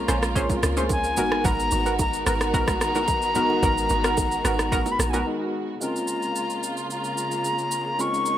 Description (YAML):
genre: amapiano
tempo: 110 BPM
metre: 4/4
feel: straight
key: Bb phrygian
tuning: A4 = 442 Hz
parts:
  - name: silver concert flute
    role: melody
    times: 0.0-8.4 s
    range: Ab5 to Db6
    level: -26 LUFS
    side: left 2 dB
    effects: tape echo
  - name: warm analog keys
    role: accompaniment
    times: 0.0-8.4 s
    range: Ab3 to Bb4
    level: -30 LUFS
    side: left 2 dB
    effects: chorus
  - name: dark studio string section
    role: sustained chords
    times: 0.0-8.4 s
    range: Db3 to Bb4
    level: -30 LUFS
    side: right 3 dB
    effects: sidechain pumping
  - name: deep log drum bass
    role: bass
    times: 0.0-5.2 s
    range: Gb1 to Db2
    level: -29 LUFS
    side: equal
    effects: none
  - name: punchy chord stab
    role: stabs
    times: 0.1-5.3 s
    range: Cb4 to C5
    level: -29 LUFS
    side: right 1 dB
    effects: chorus, tape echo
  - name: smooth R&B drum kit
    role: drums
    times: 0.1-8.4 s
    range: kick drum, rim click, shaker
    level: -27 LUFS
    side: right 1 dB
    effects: overdrive
  - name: congas and bongos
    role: percussion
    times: 0.4-5.3 s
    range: none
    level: -34 LUFS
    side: right 5 dB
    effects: none
room: light reverb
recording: none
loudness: -21 LUFS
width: side -11 dB against mid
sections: 0.0-5.8 A section; 5.8-8.4 B section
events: drop 0.0-5.8; break 5.3-5.8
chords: 0.0 Bbm9; 1.2 Abm9; 5.8 Bbm9